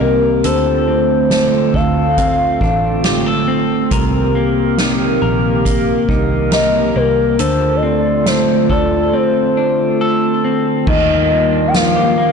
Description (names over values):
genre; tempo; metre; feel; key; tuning
dream pop; 69 BPM; 4/4; straight; unclear; A4 = 440 Hz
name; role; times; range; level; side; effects
hollow clarinet-like synth lead; melody; 0.0-12.3 s; Bb4 to G5; -16 LUFS; left 3 dB; chorus, ping-pong delay
warbly tape-like pad; sustained chords; 0.0-12.3 s; D3 to Bb4; -17 LUFS; right 2 dB; chorus, built-in reverb
clean electric guitar; arpeggios; 0.0-12.3 s; C3 to Bb4; -19 LUFS; left 3 dB; lush chorus, ping-pong delay
vintage muted fingered electric bass; bass; 0.0-12.3 s; A1 to Eb2; -21 LUFS; right 1 dB; none
soft-mallet drum kit; drums; 0.4-11.9 s; crash cymbal, hi-hat, kick drum, ride cymbal, snare drum, tambourine; -20 LUFS; right 1 dB; none
room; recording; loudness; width
moderate plate reverb, RT60 2.7 s; blown-out, overdriven recording, overdrive, nothing above 10.6 kHz; -12 LUFS; side -6 dB against mid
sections
0.0-10.9 A section; 10.9-12.3 B section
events
none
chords
0.4 Dm7; 3.9 Cm7; 7.4 Dm7; 10.9 Ebmaj9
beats
| 0.44 1.31 2.18 3.05 | 3.92 4.79 5.66 6.53 | 7.39 8.26 9.13 10.00 | 10.87 11.74